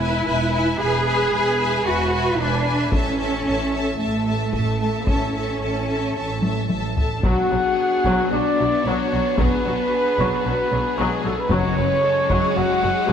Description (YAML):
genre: cinematic, epic orchestral film score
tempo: 113 BPM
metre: 4/4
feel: straight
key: B dorian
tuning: A4 = 440 Hz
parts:
  - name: warm symphonic violin section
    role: melody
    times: 0.0-13.1 s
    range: E4 to A5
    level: -31 LUFS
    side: left 4 dB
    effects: none
  - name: clear chamber violin section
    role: second line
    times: 0.0-13.1 s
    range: G#3 to E5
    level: -29 LUFS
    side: left 4 dB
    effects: none
  - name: warm symphonic viola section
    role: accompaniment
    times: 0.0-13.1 s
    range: F#3 to B4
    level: -26 LUFS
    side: left 1 dB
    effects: none
  - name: rich symphonic double bass section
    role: bass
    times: 0.0-13.1 s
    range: E1 to B1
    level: -26 LUFS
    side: right 2 dB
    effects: none
  - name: warm symphonic cello section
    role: bass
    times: 0.0-13.1 s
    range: F#2 to G#4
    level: -25 LUFS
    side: right 1 dB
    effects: none
  - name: taiko ensemble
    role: drums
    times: 2.9-12.8 s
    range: none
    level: -25 LUFS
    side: left 1 dB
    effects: none
  - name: mellow French horn section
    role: sustained chords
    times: 7.2-13.1 s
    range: G#3 to C#5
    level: -25 LUFS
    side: left 4 dB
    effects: none
  - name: mellow trumpet section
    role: stabs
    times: 7.2-13.1 s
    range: G#4 to G#5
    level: -22 LUFS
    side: right 1 dB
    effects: none
  - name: timpani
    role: percussion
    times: 11.5-12.3 s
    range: F#2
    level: -27 LUFS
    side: left 2 dB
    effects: none
room: wet scoring stage reverb, RT60 1.8 s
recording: none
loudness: -18 LUFS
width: side -8 dB against mid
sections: 0.0-7.2 A section; 7.2-13.1 B section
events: drum fill 6.4-7.2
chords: 0.0 E; 2.9 A; 7.2 Bm; 11.5 F#sus2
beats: 0.27 | 0.80 1.33 1.86 2.39 | 2.92 3.45 3.98 4.52 | 5.07 5.61 6.16 6.70 | 7.24 7.78 8.31 8.85 | 9.38 9.91 10.45 10.97 | 11.51 12.04 12.57 13.10